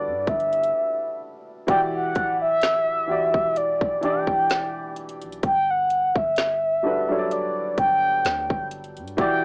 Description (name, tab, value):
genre	contemporary R&B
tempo	64 BPM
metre	4/4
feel	swing 54% on 16ths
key	unclear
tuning	A4 = 438 Hz
part	mellow horn-like synth lead	melody	0.0-9.4 s	D5 to G5	-24 LUFS	equal	chorus
part	warm baby grand piano	accompaniment	0.0-9.4 s	E3 to D5	-30 LUFS	equal	cassette tape
part	soft 808-style bass	bass	0.0-9.4 s	D1 to G2	-45 LUFS	equal	none
part	trap drum kit	drums	0.3-9.4 s	hi-hat, kick drum, snare drum	-29 LUFS	equal	cassette tape
room	light reverb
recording	home recording on cassette, small speaker sound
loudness	-23 LUFS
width	mono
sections	0.0-9.4 A section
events	break 0.7-1.7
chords	0.0 Gmaj7; 1.7 Em7; 5.4 Gmaj7